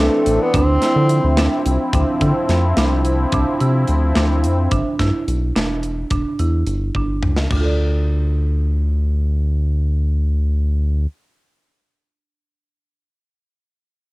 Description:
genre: progressive instrumental, band music in an uneven meter.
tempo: 215 BPM (eighths).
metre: 5/8.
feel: straight.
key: D minor.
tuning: A4 = 440 Hz.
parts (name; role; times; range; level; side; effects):
breathy tenor saxophone; melody; 0.0-1.6 s; A3 to C4; -18 LUFS; equal; none.
sweeping resonant pad; accompaniment; 0.0-4.7 s; E3 to E4; -21 LUFS; left 1 dB; chorus.
marimba with hard mallets; arpeggios; 0.0-11.8 s; D4 to D5; -24 LUFS; right 4 dB; none.
round analog bass; bass; 0.0-11.1 s; E1 to D3; -17 LUFS; equal; none.
tight metal drum kit; drums; 0.3-7.6 s; china cymbal, hi-hat, kick drum, snare drum, toms; -22 LUFS; equal; cassette tape.
room: light reverb.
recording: home recording on cassette.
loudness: -16 LUFS.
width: side -20 dB against mid.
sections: 0.0-1.9 A section; 1.9-7.5 B section; 7.5-10.3 C section.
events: drum fill 7.0-7.5.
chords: 0.0 Cadd9; 0.5 Dm7; 4.7 G; 7.5 Dm.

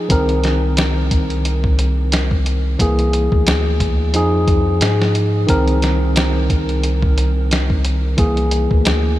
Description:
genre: trip hop.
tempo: 89 BPM.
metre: 4/4.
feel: swing 56% on 16ths.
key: C minor.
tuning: A4 = 440 Hz.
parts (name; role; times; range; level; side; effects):
bright tine electric piano; accompaniment; 0.0-9.2 s; Eb3 to Bb4; -19 LUFS; left 1 dB; harmonic tremolo, vintage 12-bit sampler grit, low-pass filter, tape echo.
round analog bass; bass; 0.1-9.2 s; C2 to Ab2; -18 LUFS; equal; none.
dusty soul sampler-style drum kit; drums; 0.1-9.0 s; hi-hat, kick drum, snare drum; -19 LUFS; equal; none.
room: light reverb.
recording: none.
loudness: -14 LUFS.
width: side -15 dB against mid.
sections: 0.0-9.2 A section.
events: filter sweep on tine electric piano 0.0-9.2.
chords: 0.1 Cm7; 2.8 C7b13; 4.1 Fm7; 5.5 Cm7; 8.2 C7b13.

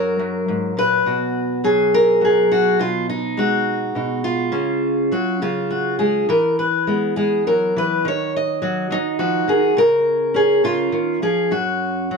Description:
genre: folk, solo fingerstyle acoustic guitar.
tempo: 69 BPM (dotted quarters).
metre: 6/8.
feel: rubato.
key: unclear.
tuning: A4 = 439 Hz.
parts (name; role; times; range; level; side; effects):
fingerpicked steel-string acoustic guitar; solo; 0.0-12.2 s; F#2 to D#5; -16 LUFS; equal; none.
room: moderate studio reverb, RT60 0.8 s.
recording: dark, warm production.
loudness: -16 LUFS.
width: side -4 dB against mid.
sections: 0.0-12.2 A section.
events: none.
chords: 0.0 F#; 1.1 B5; 2.8 G#m/B; 4.5 C#sus4; 6.3 Eadd9; 8.0 D#m; 9.8 C#add9; 11.5 F#5.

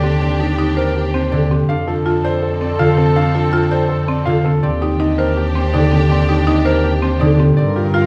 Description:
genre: classical, minimalist pattern music.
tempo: 163 BPM.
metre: 4/4.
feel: straight.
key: Eb lydian.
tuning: A4 = 440 Hz.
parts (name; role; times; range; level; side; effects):
clear grand piano; melody; 0.0-8.1 s; G4 to A5; -25 LUFS; equal; none.
clear clarinet; second line; 0.0-8.1 s; G4 to Bb4; -28 LUFS; equal; none.
concert harp; accompaniment; 0.0-8.1 s; D3 to D4; -20 LUFS; equal; none.
rich studio string section; sustained chords; 0.0-8.1 s; C4 to Bb4; -28 LUFS; equal; none.
buzzing marimba with medium mallets; arpeggios; 0.0-8.1 s; C4 to D5; -23 LUFS; equal; none.
rich double bass; bass; 0.0-8.1 s; Eb2 to G2; -22 LUFS; equal; none.
room: wet recital hall reverb, RT60 1.3 s.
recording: none.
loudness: -16 LUFS.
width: mono.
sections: 0.0-8.1 A section.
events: none.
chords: 0.0 Ebmaj7; 1.7 F; 4.6 Ebmaj7.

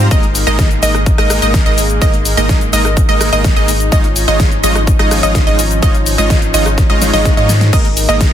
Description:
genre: EDM, festival progressive house.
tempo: 126 BPM.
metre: 4/4.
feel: straight.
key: unclear.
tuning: A4 = 440 Hz.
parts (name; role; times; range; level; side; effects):
lush unison pad; sustained chords; 0.0-8.3 s; F3 to Eb4; -21 LUFS; left 1 dB; chorus, sidechain pumping.
wide unison pluck; arpeggios; 0.0-8.3 s; Eb5; -18 LUFS; right 2 dB; sidechain pumping, ping-pong delay.
dense compressed supersaw; riff; 0.0-8.3 s; Ab3 to Eb5; -18 LUFS; right 1 dB; sidechain pumping, ping-pong delay.
saturated sub bass; bass; 0.0-8.3 s; Ab1 to Ab2; -16 LUFS; equal; sidechain pumping.
big-room dance drum kit; drums; 0.1-8.3 s; crash cymbal, hi-hat, ride cymbal, rim click, shaker, snare drum; -18 LUFS; left 1 dB; small room reverb.
electronic kick drum; drums; 0.1-8.3 s; none; -12 LUFS; equal; small room reverb.
swell; sound effects; 6.9-7.7 s; none; -25 LUFS; equal; none.
room: light reverb, digital ambience.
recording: dense, heavily limited modern master.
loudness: -9 LUFS.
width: side -10 dB against mid.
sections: 0.0-8.3 A section.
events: drum fill 6.8-7.7; swell 6.9-7.7.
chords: 0.1 Absus2; 3.9 Dbadd9/Ab; 7.7 Absus2.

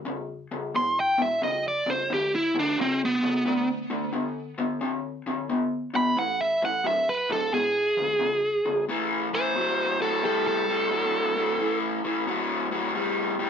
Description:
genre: blues.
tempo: 89 BPM.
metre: 4/4.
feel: swing 66% on 8ths.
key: A mixolydian.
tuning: A4 = 440 Hz.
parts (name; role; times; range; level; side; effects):
raw garage guitar; riff; 0.0-13.5 s; E2 to C4; -28 LUFS; left 2 dB; overdrive.
biting lead guitar; melody; 0.8-11.8 s; B3 to C6; -24 LUFS; right 1 dB; overdrive, plate reverb, digital delay.
room: moderate studio reverb, RT60 0.5 s.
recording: none.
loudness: -23 LUFS.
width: side -7 dB against mid.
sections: 0.0-8.9 A section; 8.9-13.5 A section.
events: none.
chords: 0.0 E5; 3.5 D5; 6.2 A5; 7.5 E7; 8.9 A5.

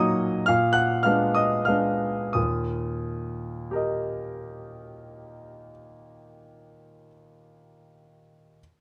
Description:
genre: classical, piano waltz.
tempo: 85-113 BPM.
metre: 3/4.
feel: rubato.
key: unclear.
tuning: A4 = 440 Hz.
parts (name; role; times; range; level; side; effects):
clear concert grand piano; solo; 0.0-8.6 s; Eb2 to Gb6; -26 LUFS; equal; none.
room: little or no reverb.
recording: close, detailed microphones.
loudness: -25 LUFS.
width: mono.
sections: 0.0-2.4 A section; 2.4-6.4 B section.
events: slowing down 0.0-2.4.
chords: 0.5 Bb7b9; 2.4 Eb.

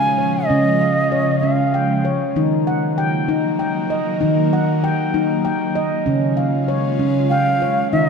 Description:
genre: world meditative, meditative tuned percussion.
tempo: 65 BPM (dotted quarters).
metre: 6/8.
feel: straight.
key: unclear.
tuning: A4 = 439 Hz.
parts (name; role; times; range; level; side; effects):
reedy bansuri; melody; 0.0-2.1, 7.3-8.1 s; Eb5 to Ab5; -19 LUFS; right 1 dB; ping-pong delay.
ethereal airy pad; sustained chords; 0.0-8.1 s; Db3 to F4; -22 LUFS; equal; ensemble chorus, built-in reverb.
handpan; arpeggios; 0.0-8.1 s; Db3 to G5; -18 LUFS; equal; none.
room: wet recital hall reverb, RT60 1.6 s, small room ambience.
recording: none.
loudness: -16 LUFS.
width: side -5 dB against mid.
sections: 0.0-8.1 A section.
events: none.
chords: 0.0 Db; 2.4 Ebm; 6.1 Db.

